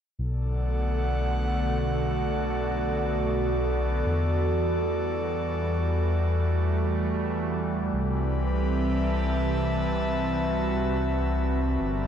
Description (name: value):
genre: melodic techno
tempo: 124 BPM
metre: 4/4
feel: straight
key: B phrygian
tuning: A4 = 440 Hz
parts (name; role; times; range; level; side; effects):
- evolving wavetable pad; sustained chords; 0.5-12.1 s; D3 to G4; -28 LUFS; right 2 dB; chorus, built-in reverb
- dark detuned saw bass; bass; 0.2-12.1 s; G1 to E2; -27 LUFS; left 1 dB; none
- airy breathy pad; texture; 0.4-12.1 s; A4 to A5; -31 LUFS; equal; chorus
- electronic hi-hat; drums; 0.4-12.1 s; none; barely audible; none; none
room: light reverb, digital ambience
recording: dry, gritty hardware recording, cassette tape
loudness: -24 LUFS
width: side -8 dB against mid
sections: 0.2-12.1 A section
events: none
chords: 0.2 Bm7; 4.1 Emadd9; 7.9 C